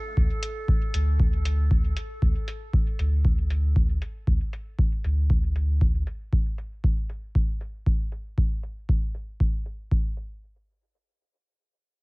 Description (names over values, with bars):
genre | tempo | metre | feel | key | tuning
dub techno | 117 BPM | 4/4 | straight | unclear | A4 = 437 Hz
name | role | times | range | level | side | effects
drifting glass-harmonics texture | texture | 0.0-2.2 s | A4 | -39 LUFS | equal | chorus, built-in reverb, sidechain pumping
soft dub sub bass | bass | 0.2-6.0 s | D2 | -24 LUFS | equal | sidechain pumping
electronic kick drum | drums | 0.2-10.0 s | none | -24 LUFS | equal | none
electronic hi-hat | drums | 0.4-10.3 s | none | -39 LUFS | left 1 dB | low-pass filter on hats
room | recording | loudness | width
digital ambience | none | -23 LUFS | side -27 dB against mid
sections
0.0-10.4 A section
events
filter sweep on drum 0.0-10.4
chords
0.0 D5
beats
| 0.17 0.68 1.20 1.71 | 2.22 2.73 3.25 3.76 | 4.27 4.79 5.30 5.81 | 6.32 6.84 7.35 7.86 | 8.38 8.89 9.40 9.91